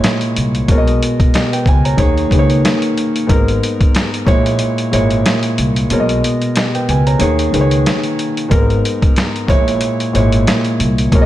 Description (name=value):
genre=hip hop, boom-bap hip-hop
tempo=92 BPM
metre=4/4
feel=swing 57% on 16ths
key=G# minor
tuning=A4 = 437 Hz
part: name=dark grand piano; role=accompaniment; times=0.0-11.3 s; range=G#2 to A#5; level=-15 LUFS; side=equal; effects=none
part: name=boom bap sampler-style drum kit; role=drums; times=0.0-11.3 s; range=hi-hat, kick drum, snare drum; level=-16 LUFS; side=equal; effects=vintage 12-bit sampler grit
part: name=upright bass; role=bass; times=0.4-11.3 s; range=G#1 to D#2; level=-16 LUFS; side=equal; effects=none
room=light reverb, studio reverb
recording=none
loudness=-12 LUFS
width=side -14 dB against mid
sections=0.0-11.3 A section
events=kick muted 5.9-8.5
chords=0.0 A#m7b5; 0.7 G#madd9/B; 2.0 D#7sus4; 3.3 G#madd9; 4.3 A#m7b5; 5.9 G#madd9/B; 7.2 D#7sus4; 8.5 G#madd9; 9.5 A#m7b5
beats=0.03 | 0.69 1.34 1.99 2.64 | 3.29 3.95 4.60 5.25 | 5.90 6.55 7.21 7.86 | 8.51 9.16 9.82 10.47 | 11.12